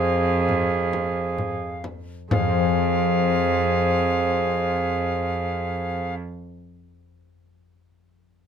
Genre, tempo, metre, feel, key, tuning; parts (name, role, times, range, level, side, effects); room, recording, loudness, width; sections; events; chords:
classical, renaissance-style consort dance; 63-70 BPM; 4/4; straight; F minor; A4 = 440 Hz
alto recorder; melody; 0.0-6.1 s; F5; -27 LUFS; left 1 dB
dark cor anglais; second line; 0.0-6.1 s; Ab4; -28 LUFS; right 7 dB
concert harp; accompaniment; 0.0-6.4 s; F2 to C5; -29 LUFS; left 7 dB
dark bassoon; accompaniment; 0.0-6.1 s; C4; -28 LUFS; left 2 dB
rich cello; bass; 0.0-6.2 s; F2; -27 LUFS; right 2 dB
frame drum; percussion; 0.5-2.8 s; -28 LUFS; left 1 dB
light reverb; close, detailed microphones; -20 LUFS; side -8 dB against mid
0.0-2.3 A section; 2.3-6.1 B section
slowing down 0.0-2.3
0.0 Fm